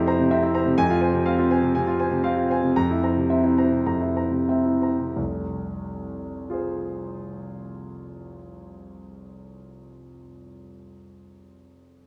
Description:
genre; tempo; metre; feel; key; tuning
classical, virtuoso piano study; 86-129 BPM; 4/4; rubato; F minor; A4 = 439 Hz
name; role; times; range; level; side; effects
warm grand piano; solo; 0.0-12.1 s; F1 to Bb5; -25 LUFS; equal; none
room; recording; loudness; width
wet recital hall reverb, RT60 1.6 s; none; -23 LUFS; mono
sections
0.0-5.2 A section; 5.2-10.5 B section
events
slowing down 0.0-5.2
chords
0.0 C7/F; 0.8 Fm; 2.8 C7/F; 5.2 Fm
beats
0.31 | 0.78 1.25 1.73 2.23 | 2.75 3.29 3.86 4.49 | 5.17 5.83 6.50 7.15 | 7.82 8.49 9.16 9.82

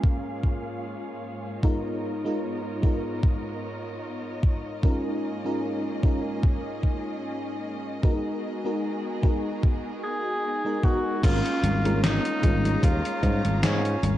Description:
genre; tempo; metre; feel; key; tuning
vaporwave; 75 BPM; 4/4; swing 55% on 16ths; unclear; A4 = 440 Hz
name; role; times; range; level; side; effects
FM electric piano with soft pad layer; accompaniment; 0.0-14.2 s; G#3 to A#4; -30 LUFS; equal; tremolo, ensemble chorus, tape echo
rich studio string section; sustained chords; 0.0-14.2 s; G#2 to A#5; -36 LUFS; equal; vintage 12-bit sampler grit, low-pass filter
electronic kick drum; drums; 0.0-13.4 s; none; -22 LUFS; equal; none
clear alto saxophone; melody; 10.0-14.1 s; C#4 to G#4; -28 LUFS; equal; tape echo
sustaining fretless electric bass; bass; 11.2-14.2 s; G#1 to G#2; -25 LUFS; equal; none
gated 80s digital drum machine; drums; 11.2-14.2 s; congas, crash cymbal, hi-hat, snare drum; -28 LUFS; left 1 dB; gated reverb, gated reverb snare
room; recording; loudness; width
light reverb, digital ambience; cassette tape; -24 LUFS; side -13 dB against mid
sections
0.0-11.2 A section; 11.2-14.2 B section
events
none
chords
0.0 A#m7/G#; 1.6 C#13/G#; 4.8 D#9sus4/G#; 8.0 G#m9; 11.2 A#m7/G#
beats
0.03 0.83 | 1.63 2.43 3.23 4.03 | 4.83 5.63 6.43 7.23 | 8.03 8.83 9.63 10.43 | 11.23 12.03 12.83 13.63

